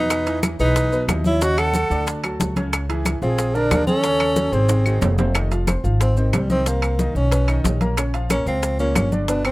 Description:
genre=Afro-Cuban jazz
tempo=183 BPM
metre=4/4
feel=straight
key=F minor from 5.4 s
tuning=A4 = 444 Hz
part: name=warm tenor saxophone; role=melody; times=0.0-9.5 s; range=Eb3 to A4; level=-23 LUFS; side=equal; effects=tape echo
part: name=hollow concert flute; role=second line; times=0.0-5.2 s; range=G#4 to F#5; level=-25 LUFS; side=right 1 dB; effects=none
part: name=clear concert grand piano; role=accompaniment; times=0.0-9.5 s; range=Bb2 to C6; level=-27 LUFS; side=equal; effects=none
part: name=upright bass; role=bass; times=0.0-9.5 s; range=E#1 to E2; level=-21 LUFS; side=equal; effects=none
part: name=bongos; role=percussion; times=0.1-9.4 s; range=none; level=-30 LUFS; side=left 6 dB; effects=none
part: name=claves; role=percussion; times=0.1-9.5 s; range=none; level=-28 LUFS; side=left 2 dB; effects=none
part: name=congas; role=percussion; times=0.1-9.5 s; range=none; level=-25 LUFS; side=left 1 dB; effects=none
part: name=maracas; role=percussion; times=0.1-9.5 s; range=none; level=-34 LUFS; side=right 2 dB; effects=none
part: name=timbales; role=percussion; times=0.1-9.5 s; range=none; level=-30 LUFS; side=right 6 dB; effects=none
room=light reverb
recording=rough home demo mix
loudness=-17 LUFS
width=side -19 dB against mid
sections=0.0-5.4 A section; 5.4-9.5 B section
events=drum fill 4.7-5.4; tenor saxophone solo 5.4-9.5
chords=0.1 Emaj7; 1.4 D#m7b5; 2.1 D; 2.7 C#m; 3.4 A#7; 4.0 D#m7b5; 4.7 G#7; 5.4 Fm7; 6.7 Cm7; 7.3 B; 8.0 Bbmadd9

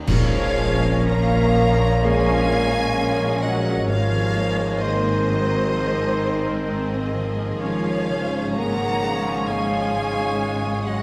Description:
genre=cinematic, emotional film score for orchestra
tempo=64 BPM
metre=4/4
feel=rubato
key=Bb minor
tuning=A4 = 440 Hz
part: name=concert harp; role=arpeggios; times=0.0-11.0 s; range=Ab2 to Bb5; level=-33 LUFS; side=equal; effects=none
part: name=rich studio violin section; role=melody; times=0.1-11.0 s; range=Eb5 to Bb5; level=-33 LUFS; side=equal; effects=none
part: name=mellow cor anglais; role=second line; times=0.1-11.0 s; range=C5 to Db5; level=-33 LUFS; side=equal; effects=none
part: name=small flute group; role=second line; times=0.1-11.0 s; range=C5 to Gb5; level=-32 LUFS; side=equal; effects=none
part: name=warm clarinet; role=second line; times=0.1-11.0 s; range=Ab4 to Bb4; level=-31 LUFS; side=equal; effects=none
part: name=warm studio violin section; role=second line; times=0.1-11.0 s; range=F4 to Eb5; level=-36 LUFS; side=equal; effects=none
part: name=rich studio viola section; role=accompaniment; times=0.1-11.0 s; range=C3 to Db4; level=-31 LUFS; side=equal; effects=none
part: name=dark French horn section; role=sustained chords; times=0.1-11.0 s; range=Eb3 to Bb3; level=-29 LUFS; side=equal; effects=none
part: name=rich studio cello section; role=bass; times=0.1-11.0 s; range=Ab2 to Bb2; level=-30 LUFS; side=equal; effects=none
part: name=rich studio double bass section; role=bass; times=0.1-11.0 s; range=Ab1 to Bb1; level=-30 LUFS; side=equal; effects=none
part: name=clash cymbals and concert bass drum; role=percussion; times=0.1-2.0 s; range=none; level=-30 LUFS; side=equal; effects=none
part: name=timpani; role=percussion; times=0.1-1.5 s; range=Bb2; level=-28 LUFS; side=equal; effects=none
room=wet recital hall reverb, RT60 1.7 s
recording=none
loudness=-21 LUFS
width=mono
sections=0.1-11.0 A section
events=band accent 0.1-1.1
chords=0.1 Bbm7; 3.9 Abadd9; 7.6 Db/Ab

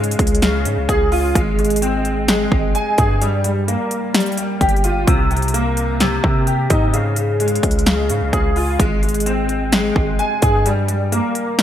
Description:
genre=hip hop, trap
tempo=129 BPM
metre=4/4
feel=half-time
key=unclear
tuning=A4 = 441 Hz
part: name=warm concert grand piano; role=accompaniment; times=0.0-11.6 s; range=C3 to Ab5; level=-18 LUFS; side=equal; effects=ensemble chorus
part: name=hard-hitting 808-style bass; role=bass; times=0.0-11.2 s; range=G1 to C3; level=-20 LUFS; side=equal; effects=none
part: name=big-room dance drum kit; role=drums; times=0.0-11.6 s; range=hi-hat, kick drum, snare drum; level=-18 LUFS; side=equal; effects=overdrive
room=light reverb, digital ambience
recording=bright 1980s-style digital production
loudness=-15 LUFS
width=side -10 dB against mid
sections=0.0-11.6 A section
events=none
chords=0.0 Db; 1.4 Ab; 3.2 Gm7; 5.1 Cm7; 6.9 Db; 8.8 Ab; 10.7 Gm

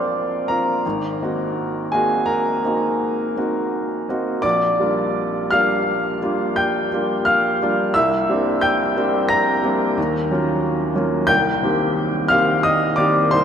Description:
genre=classical, impressionist solo piano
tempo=81-93 BPM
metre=5/4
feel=rubato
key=unclear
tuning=A4 = 440 Hz
part: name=clear baby grand piano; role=solo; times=0.0-13.4 s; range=Ab1 to Bb6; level=-17 LUFS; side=equal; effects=none
room=wet cathedral reverb, RT60 6.5 s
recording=in a vast, echoing space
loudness=-17 LUFS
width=side -8 dB against mid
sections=0.0-13.4 A section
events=none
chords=0.0 Bb69; 0.8 Ab9; 4.4 Bb6; 8.0 C9; 10.0 Ebm9; 11.3 Cm11

